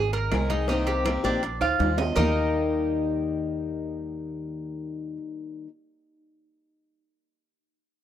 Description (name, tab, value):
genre	latin, Cuban son and guajira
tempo	162 BPM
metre	4/4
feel	straight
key	Eb major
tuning	A4 = 439 Hz
part	Cuban tres	arpeggios	0.0-5.2 s	D4 to Eb5	-28 LUFS	right 4 dB	none
part	upright bass	bass	0.0-5.2 s	Ab1 to Eb2	-30 LUFS	equal	none
part	congas	percussion	0.1-2.3 s	none	-33 LUFS	equal	none
part	timbales	percussion	0.1-2.3 s	none	-32 LUFS	right 6 dB	none
part	picked swing-style acoustic guitar	accompaniment	0.3-5.7 s	C3 to Ab4	-28 LUFS	left 5 dB	none
part	bongos	percussion	0.3-2.2 s	none	-38 LUFS	left 6 dB	none
part	claves	percussion	0.3-2.3 s	none	-38 LUFS	left 9 dB	none
room	little or no reverb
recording	dry, close 1970s-style studio recording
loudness	-24 LUFS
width	side -10 dB against mid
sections	0.0-2.2 A section; 2.2-5.1 B section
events	drum fill 1.2-2.2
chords	0.0 Abadd9; 0.7 Cm7; 1.4 Bb7; 2.2 Eb